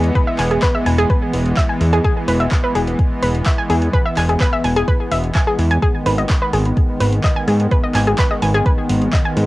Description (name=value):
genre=melodic techno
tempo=127 BPM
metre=4/4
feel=straight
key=unclear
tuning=A4 = 440 Hz
part: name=lush unison pad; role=sustained chords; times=0.0-9.5 s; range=D#3 to B3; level=-22 LUFS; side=equal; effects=chorus, sidechain pumping, cassette tape
part: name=fat analog bass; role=bass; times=0.0-9.5 s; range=E1 to G#2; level=-17 LUFS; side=equal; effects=sidechain pumping
part: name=punchy analog drum machine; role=drums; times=0.0-9.5 s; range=handclaps, hi-hat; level=-27 LUFS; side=equal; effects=overdrive
part: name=analog pluck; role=arpeggios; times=0.2-9.4 s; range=G#4 to G#5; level=-20 LUFS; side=equal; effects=chorus, sidechain pumping, cassette tape, tape echo
part: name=electronic kick drum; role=drums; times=0.2-9.2 s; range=none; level=-16 LUFS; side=equal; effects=none
room=light reverb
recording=home recording on cassette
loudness=-14 LUFS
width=side -18 dB against mid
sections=0.0-9.5 A section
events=none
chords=0.0 E; 5.8 G#m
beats=| 0.15 0.63 1.10 1.57 | 2.04 2.52 2.99 3.46 | 3.93 4.41 4.88 5.35 | 5.82 6.30 6.77 7.24 | 7.71 8.19 8.66 9.13